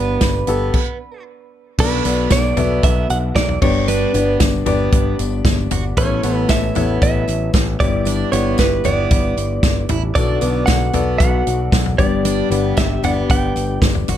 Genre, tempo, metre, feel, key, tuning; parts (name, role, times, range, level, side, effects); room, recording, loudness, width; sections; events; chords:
piano-driven pop; 115 BPM; 4/4; straight; B minor; A4 = 437 Hz
direct-recorded clean electric guitar; melody; 0.0-13.8 s; B4 to G5; -22 LUFS; right 5 dB; spring reverb
warm concert grand piano; accompaniment; 0.0-14.2 s; G2 to F5; -22 LUFS; left 6 dB
picked steel-string acoustic guitar; riff; 0.0-14.2 s; B3 to F#4; -26 LUFS; right 8 dB
modern bright picked electric bass; bass; 0.0-14.2 s; G1 to B1; -21 LUFS; equal
natural country drum kit; drums; 0.2-14.2 s; crash cymbal, hi-hat, kick drum, snare drum, toms; -18 LUFS; equal
tambourine; percussion; 0.2-14.2 s; -36 LUFS; left 14 dB
warm French horn section; second line; 10.1-14.0 s; D3 to G4; -26 LUFS; left 7 dB
light reverb; dark, warm production; -14 LUFS; side -11 dB against mid
0.0-1.8 A section; 1.8-14.2 B section
stop 0.7-1.8
0.0 G7; 1.8 Bm7; 3.6 G; 6.0 Aadd9; 7.8 Em7/G; 10.2 Bm7; 12.0 G